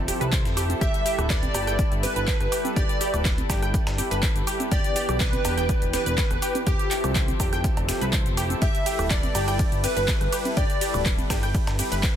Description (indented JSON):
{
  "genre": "progressive house",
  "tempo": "123 BPM",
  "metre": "4/4",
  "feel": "straight",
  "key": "G mixolydian",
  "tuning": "A4 = 439 Hz",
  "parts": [
    { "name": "lush unison pad", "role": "sustained chords", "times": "0.0-12.2 s", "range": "E3 to B4", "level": "-32 LUFS", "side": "equal", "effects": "chorus, sidechain pumping" },
    { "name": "fat analog bass", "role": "bass", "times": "0.0-12.1 s", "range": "D1 to C2", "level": "-28 LUFS", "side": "equal", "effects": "sidechain pumping" },
    { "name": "wide unison pluck", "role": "arpeggios", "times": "0.1-12.1 s", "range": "G4 to G6", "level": "-31 LUFS", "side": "right 1 dB", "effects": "sidechain pumping, ping-pong delay" },
    { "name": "breakbeat sampler-style drum kit", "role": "drums", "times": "0.1-12.2 s", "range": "hi-hat, snare drum", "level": "-38 LUFS", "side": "left 1 dB", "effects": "none" },
    { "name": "pop drum kit", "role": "drums", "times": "0.1-12.1 s", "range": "handclaps, hi-hat, ride cymbal, rim click, shaker", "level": "-31 LUFS", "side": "equal", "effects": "overdrive, sidechain pumping on hats, sidechain pumping on perc, sidechain pumping on cymbals" },
    { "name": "congas, woodblock and cowbell", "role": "percussion", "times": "0.1-11.9 s", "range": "none", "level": "-35 LUFS", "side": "right 2 dB", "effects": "sidechain pumping on perc" },
    { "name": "electronic kick drum", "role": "drums", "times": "0.3-12.1 s", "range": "none", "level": "-25 LUFS", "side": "equal", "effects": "overdrive" },
    { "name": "plucky unison lead", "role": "melody", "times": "0.8-11.0 s", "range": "G4 to E5", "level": "-30 LUFS", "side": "equal", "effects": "lush chorus, ping-pong delay" },
    { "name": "soft supersaw", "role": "second line", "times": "0.8-11.0 s", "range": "G4 to E5", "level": "-34 LUFS", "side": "equal", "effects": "sidechain pumping, ping-pong delay" }
  ],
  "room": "little or no reverb",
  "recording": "dense, heavily limited modern master",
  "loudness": "-21 LUFS",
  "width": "side -10 dB against mid",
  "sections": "0.0-12.2 A section",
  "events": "none",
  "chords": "0.0 Fmaj7; 0.8 G69; 4.7 Em7; 6.7 Fmaj7; 8.6 G69"
}